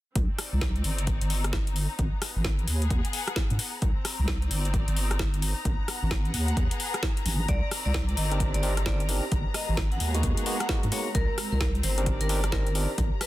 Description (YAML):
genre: UK garage, two-step garage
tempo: 131 BPM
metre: 4/4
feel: swing 62% on 16ths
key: C minor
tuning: A4 = 440 Hz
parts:
  - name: deep soft wobble bass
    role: bass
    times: 0.2-13.1 s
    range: G1 to Ab2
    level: -27 LUFS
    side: equal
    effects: chorus
  - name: electronic kick drum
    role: drums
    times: 0.2-13.1 s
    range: none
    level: -29 LUFS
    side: equal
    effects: none
  - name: garage drum kit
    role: drums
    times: 0.2-13.3 s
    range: hi-hat, rim click, snare drum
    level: -32 LUFS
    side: left 1 dB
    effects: none
  - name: rich studio string section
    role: texture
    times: 0.2-13.3 s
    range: Eb3 to Bb5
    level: -36 LUFS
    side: left 3 dB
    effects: sidechain pumping
  - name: vibraphone with hard mallets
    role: melody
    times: 7.5-13.3 s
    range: Bb4 to Gb5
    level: -36 LUFS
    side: equal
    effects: dub echo
  - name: ethereal airy pad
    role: sustained chords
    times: 8.2-13.3 s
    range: Ab3 to D5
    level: -41 LUFS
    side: right 3 dB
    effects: ensemble chorus, built-in reverb, sidechain pumping
  - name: barky tine electric piano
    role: stabs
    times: 8.3-12.9 s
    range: Ab3 to Bb4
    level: -34 LUFS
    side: right 1 dB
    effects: overdrive, ping-pong delay
room: little or no reverb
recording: dense, heavily limited modern master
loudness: -25 LUFS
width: side -16 dB against mid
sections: 0.2-13.3 A section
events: none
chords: 0.2 Cm9; 2.0 Abm9; 3.8 Cm9; 5.7 Abm9; 7.5 Cm9; 9.3 Abm9; 11.1 Cm9